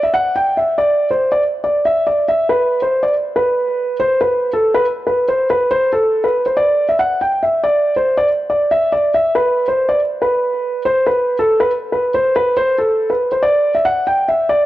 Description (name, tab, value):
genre	hip hop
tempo	140 BPM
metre	4/4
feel	half-time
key	unclear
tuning	A4 = 439 Hz
part	dark concert grand piano	solo	0.0-14.7 s	A4 to G5	-13 LUFS	equal	none
room	light reverb, small room ambience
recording	dry, gritty hardware recording, transformer saturation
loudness	-13 LUFS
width	side -15 dB against mid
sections	0.6-7.4 A section; 7.4-14.7 B section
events	none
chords	none